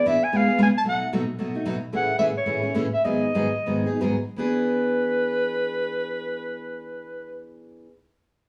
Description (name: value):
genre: jazz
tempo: 157-225 BPM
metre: 4/4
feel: swing 57% on 8ths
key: E mixolydian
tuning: A4 = 439 Hz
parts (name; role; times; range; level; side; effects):
- clear clarinet; melody; 0.0-7.5 s; B4 to A5; -27 LUFS; equal; plate reverb
- picked steel-string acoustic guitar; accompaniment; 0.1-7.9 s; G#2 to G#4; -27 LUFS; equal; none
room: wet studio reverb, RT60 0.6 s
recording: heard from further back in the room, small room ambience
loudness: -24 LUFS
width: mono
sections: 0.0-1.9 A section; 1.9-4.4 B section; 4.4-7.4 C section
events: slowing down 1.9-4.4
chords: 0.3 C#7; 0.9 B7; 1.9 Amaj7; 3.0 G#m7; 4.4 E7